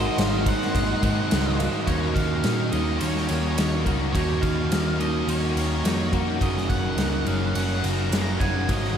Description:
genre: rock, shoegaze and dream pop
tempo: 106 BPM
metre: 4/4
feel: straight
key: unclear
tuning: A4 = 440 Hz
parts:
  - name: octave-fuzz lead guitar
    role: melody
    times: 0.0-9.0 s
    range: Db5 to Bb5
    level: -32 LUFS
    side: right 1 dB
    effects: distortion, ping-pong delay
  - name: chorused pulse-width pad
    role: sustained chords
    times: 0.0-1.9 s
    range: Bb4 to C6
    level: -36 LUFS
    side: equal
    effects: none
  - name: picked twelve-string acoustic guitar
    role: arpeggios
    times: 0.0-9.0 s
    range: Eb3 to Gb4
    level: -34 LUFS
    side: left 5 dB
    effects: lush chorus, ping-pong delay
  - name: distorted electric guitar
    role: riff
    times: 0.0-9.0 s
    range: Gb2 to Eb4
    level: -32 LUFS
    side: equal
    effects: overdrive
  - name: electric guitar through a small old amp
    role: riff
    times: 0.0-9.0 s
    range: Eb3 to F5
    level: -30 LUFS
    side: right 8 dB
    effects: reverse reverb
  - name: thick fuzz guitar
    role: riff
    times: 0.0-9.0 s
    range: Gb2 to Eb4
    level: -31 LUFS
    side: left 8 dB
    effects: distortion, ensemble chorus
  - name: hollow-body short-scale picked electric bass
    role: bass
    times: 0.0-8.9 s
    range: Gb1 to Bb2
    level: -27 LUFS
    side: equal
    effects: none
  - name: raw garage drum kit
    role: drums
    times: 0.2-8.9 s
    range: kick drum, ride cymbal, snare drum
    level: -27 LUFS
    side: equal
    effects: none
room: moderate huge ambient reverb, RT60 7.8 s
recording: dreamy mix soaked in reverb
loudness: -21 LUFS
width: side -8 dB against mid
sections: 0.0-1.9 A section; 1.9-9.0 B section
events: none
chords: 0.0 Ab13; 1.9 Ebm7; 6.4 Gb6

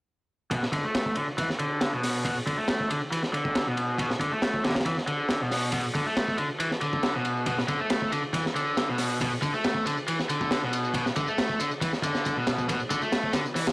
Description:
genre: breakbeat, breaks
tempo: 138 BPM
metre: 4/4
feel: straight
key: B minor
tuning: A4 = 438 Hz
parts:
  - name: cranked stack guitar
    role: riff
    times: 0.5-13.6 s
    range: B2 to A3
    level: -27 LUFS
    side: equal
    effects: overdrive, low-pass filter, tape echo
  - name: crunchy breakbeat drum kit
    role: drums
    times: 0.5-13.7 s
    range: hi-hat, kick drum, ride cymbal, snare drum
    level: -28 LUFS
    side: equal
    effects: high-pass filter on kick, high-pass filter on cymbals, high-pass filter on hats, high-pass filter on snare, high-pass filter on room
  - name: tambourine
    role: drums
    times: 0.5-13.7 s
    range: none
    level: -42 LUFS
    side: left 1 dB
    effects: none
room: studio ambience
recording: dry, gritty hardware recording, cassette tape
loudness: -25 LUFS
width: side -24 dB against mid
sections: 0.5-13.7 A section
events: none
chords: none

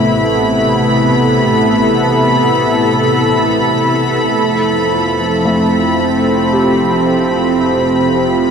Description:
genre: ambient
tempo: 56 BPM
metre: 3/4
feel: straight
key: unclear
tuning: A4 = 437 Hz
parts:
  - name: warm analog pad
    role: sustained chords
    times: 0.0-8.5 s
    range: C3 to A4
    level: -12 LUFS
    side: equal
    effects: chorus, shimmer reverb
  - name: dark studio double bass section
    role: bass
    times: 0.0-8.5 s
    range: F1 to A1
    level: -27 LUFS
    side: equal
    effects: none
  - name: clear studio violin section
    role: texture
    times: 0.0-8.5 s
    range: B5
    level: -18 LUFS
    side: left 1 dB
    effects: shimmer reverb
  - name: felt-muted upright piano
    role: arpeggios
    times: 5.5-8.5 s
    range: A3 to G4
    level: -18 LUFS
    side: right 1 dB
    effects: ping-pong delay, shimmer reverb
room: wet huge ambient reverb, RT60 7.9 s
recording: in a vast, echoing space, cassette tape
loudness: -10 LUFS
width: side -6 dB against mid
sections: 0.0-8.5 A section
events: none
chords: 0.0 Amadd9; 4.4 Fmaj7

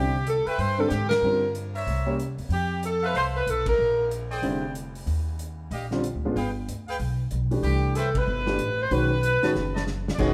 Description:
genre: jazz, big band swing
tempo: 187 BPM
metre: 4/4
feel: swing 62% on 8ths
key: C major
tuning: A4 = 444 Hz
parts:
  - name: clear saxophone section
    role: melody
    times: 0.0-4.1, 7.6-10.3 s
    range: B3 to D#5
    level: -27 LUFS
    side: equal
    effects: none
  - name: warm baby grand piano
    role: accompaniment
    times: 0.0-2.2, 4.4-10.3 s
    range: D3 to G4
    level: -31 LUFS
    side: equal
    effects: none
  - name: upright bass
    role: bass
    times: 0.0-10.3 s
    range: E1 to Ab2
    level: -30 LUFS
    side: equal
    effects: none
  - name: vintage drum kit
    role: drums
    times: 0.3-10.3 s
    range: crash cymbal, hi-hat, kick drum, ride cymbal, snare drum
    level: -38 LUFS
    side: equal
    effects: none
  - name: clear trumpet section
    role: stabs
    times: 0.5-9.8 s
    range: G4 to A5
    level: -36 LUFS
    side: equal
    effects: none
room: wet stone room reverb, RT60 1.1 s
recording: band playing live in one room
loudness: -26 LUFS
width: mono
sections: 0.0-10.2 A section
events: band accent 1.1, 3.6, 8.1; drum fill 9.6-10.2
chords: 0.0 Cmaj7; 1.2 Gm7; 1.9 C7b9; 2.5 Fmaj7; 3.8 Bb13; 5.1 Ebmaj9; 6.4 G7b9; 7.6 Cmaj7; 8.9 B9

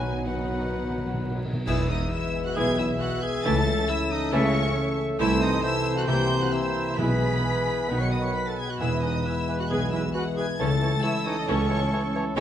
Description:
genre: classical, dramatic, fast romantic movement for symphony orchestra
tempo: 134 BPM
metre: 4/4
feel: straight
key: E major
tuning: A4 = 439 Hz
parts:
  - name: clear studio violin section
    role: melody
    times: 0.0-12.4 s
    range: F#5 to C#7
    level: -33 LUFS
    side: left 2 dB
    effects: none
  - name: mellow clarinet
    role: second line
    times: 0.0-12.4 s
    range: C#4 to D#5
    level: -33 LUFS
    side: left 2 dB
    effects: none
  - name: mellow hollow silver concert flute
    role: second line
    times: 0.0-12.4 s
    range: B4 to Bb5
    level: -38 LUFS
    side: left 2 dB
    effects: none
  - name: warm oboe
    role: second line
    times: 0.0-12.4 s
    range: G#4 to C#5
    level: -37 LUFS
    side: right 2 dB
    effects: none
  - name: warm symphonic violin section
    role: second line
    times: 0.0-12.4 s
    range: F#4 to D#6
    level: -37 LUFS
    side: left 3 dB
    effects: none
  - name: warm bassoon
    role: accompaniment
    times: 0.0-12.4 s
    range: D#3 to G#3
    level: -35 LUFS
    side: right 2 dB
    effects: none
  - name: warm symphonic viola section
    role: accompaniment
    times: 0.0-12.4 s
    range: G#3 to A4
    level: -33 LUFS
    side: right 2 dB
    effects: none
  - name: dark French horn section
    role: sustained chords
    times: 0.0-12.4 s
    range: B3 to B4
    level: -33 LUFS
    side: left 4 dB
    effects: none
  - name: mellow trombone section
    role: sustained chords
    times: 0.0-12.4 s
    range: D#3 to Bb3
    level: -36 LUFS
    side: right 4 dB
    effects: none
  - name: concert harp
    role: arpeggios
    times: 0.0-12.4 s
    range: B2 to B5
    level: -34 LUFS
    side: left 6 dB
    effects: none
  - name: warm symphonic cello section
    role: bass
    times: 0.0-12.4 s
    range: C#2 to C#3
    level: -32 LUFS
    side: right 1 dB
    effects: none
  - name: warm symphonic double bass section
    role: bass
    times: 0.0-12.4 s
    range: E1 to C#2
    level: -32 LUFS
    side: right 1 dB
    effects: none
  - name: timpani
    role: percussion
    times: 0.0-1.6, 7.0-7.6 s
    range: B2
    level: -35 LUFS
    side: equal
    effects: none
  - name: warm trumpet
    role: stabs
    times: 1.7-12.4 s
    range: G#4 to E5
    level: -34 LUFS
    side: right 2 dB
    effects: none
  - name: mellow tuba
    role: bass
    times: 1.7-12.4 s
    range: E1 to C#2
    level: -34 LUFS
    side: right 2 dB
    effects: none
  - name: clash cymbals and concert bass drum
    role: percussion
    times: 1.7-2.5 s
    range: none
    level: -37 LUFS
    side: equal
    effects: none
room: moderate scoring stage reverb, RT60 1.8 s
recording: vinyl crackle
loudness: -23 LUFS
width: side -10 dB against mid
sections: 0.0-1.7 A section; 1.7-12.4 B section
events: timpani fill 0.0-1.7; band accent 1.7-2.1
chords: 0.0 B; 1.7 E; 3.5 A/C#; 5.2 Am/C; 6.1 C7; 7.0 E/B; 7.9 B; 8.8 E; 10.6 A/C#

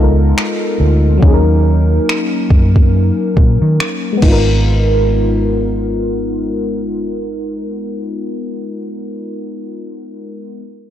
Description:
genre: contemporary R&B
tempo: 70 BPM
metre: 4/4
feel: swing 58% on 16ths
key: G# dorian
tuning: A4 = 440 Hz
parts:
  - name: FM electric piano with soft pad layer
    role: accompaniment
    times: 0.0-10.6 s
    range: F#3 to A#4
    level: -17 LUFS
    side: left 1 dB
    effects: chorus, low-pass filter
  - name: vintage muted fingered electric bass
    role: bass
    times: 0.0-9.2 s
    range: G#1 to D#3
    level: -14 LUFS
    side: equal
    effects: none
  - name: smooth R&B drum kit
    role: drums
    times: 0.4-4.5 s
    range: crash cymbal, finger snaps, kick drum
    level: -14 LUFS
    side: equal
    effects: soft clipping on snare
room: little or no reverb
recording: blown-out, overdriven recording, overdrive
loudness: -12 LUFS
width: side -11 dB against mid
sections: 0.0-4.7 A section; 4.7-8.1 B section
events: filter sweep on FM electric piano 0.0-4.7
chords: 0.0 G#m69; 1.2 D#m7; 4.2 G#m69

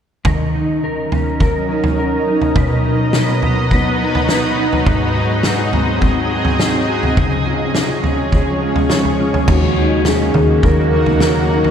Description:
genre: dream pop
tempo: 104 BPM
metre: 4/4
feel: straight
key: Eb minor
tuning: A4 = 440 Hz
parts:
  - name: loose indie drum kit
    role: drums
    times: 0.2-11.7 s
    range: crash cymbal, kick drum, snare drum, toms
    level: -18 LUFS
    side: equal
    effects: none
  - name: shimmering ambient pad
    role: sustained chords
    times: 0.9-11.7 s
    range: Db3 to Eb5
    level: -18 LUFS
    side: equal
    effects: chorus, built-in reverb
  - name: mellow electric guitar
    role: arpeggios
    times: 0.3-11.7 s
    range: Ab2 to B4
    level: -19 LUFS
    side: left 1 dB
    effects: ensemble chorus, tape echo
  - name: warm velvety synth lead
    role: melody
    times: 9.5-11.7 s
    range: Gb4 to Bb4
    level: -18 LUFS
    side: equal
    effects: chorus, tape echo
  - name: plucky analog bass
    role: bass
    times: 9.5-11.7 s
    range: Eb2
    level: -17 LUFS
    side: equal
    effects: none
room: wet cathedral reverb, RT60 5.1 s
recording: dreamy mix soaked in reverb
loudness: -13 LUFS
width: side -8 dB against mid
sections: 0.2-9.5 A section; 9.5-11.7 B section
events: none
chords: 0.2 Ebm7; 2.6 B; 4.9 Ab7; 7.2 Db; 9.5 Ebm7

